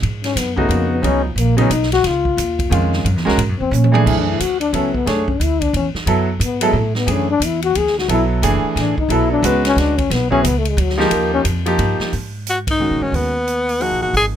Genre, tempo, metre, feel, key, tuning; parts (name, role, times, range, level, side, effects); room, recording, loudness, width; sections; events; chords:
modal jazz; 179 BPM; 3/4; swing 62% on 8ths; B dorian from 4.1 s; A4 = 440 Hz
upright bass; bass; 0.0-14.4 s; F#1 to B2; -20 LUFS; right 1 dB
swinging big-band drum kit; drums; 0.0-14.2 s; crash cymbal, hi-hat, kick drum, ride cymbal, snare drum, toms; -25 LUFS; equal
breathy trombone; second line; 0.2-11.4 s; E#3 to G#4; -19 LUFS; left 6 dB
clear concert grand piano; accompaniment; 0.6-14.3 s; C#3 to C#5; -19 LUFS; right 2 dB
warm tenor saxophone; melody; 12.5-14.3 s; B3 to G#4; -17 LUFS; left 1 dB
little or no reverb; close, detailed microphones; -15 LUFS; side -10 dB against mid
0.0-4.1 A section; 4.1-12.1 A section; 12.1-14.4 B section
trombone solo 0.0-12.1; drum fill 3.7-4.1; band accent 12.6
0.0 A#m (rootless); 3.1 F#7; 4.1 Bm11 (rootless); 6.1 Dadd9; 8.1 Bm11; 10.1 N.C.; 11.1 D#; 12.1 G#m7